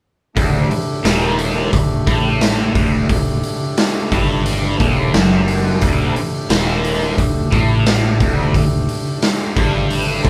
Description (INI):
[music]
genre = psychedelic rock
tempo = 88 BPM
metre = 4/4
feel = straight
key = D major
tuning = A4 = 441 Hz
[part]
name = hand-pumped harmonium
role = sustained chords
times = 0.4-10.3 s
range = A3 to A4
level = -28 LUFS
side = equal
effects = none
[part]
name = thick fuzz guitar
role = riff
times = 0.4-10.3 s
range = D2 to A2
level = -20 LUFS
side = equal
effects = distortion, phaser
[part]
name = fingered electric bass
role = bass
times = 0.4-10.3 s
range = D1 to A1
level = -25 LUFS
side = equal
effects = none
[part]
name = raw garage drum kit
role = drums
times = 0.4-10.3 s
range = hi-hat, kick drum, snare drum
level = -20 LUFS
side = equal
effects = none
[sound]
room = moderate large studio reverb, RT60 0.8 s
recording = band playing live in one room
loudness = -16 LUFS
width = mono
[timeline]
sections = 0.4-10.3 A section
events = none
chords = 0.4 Dsus4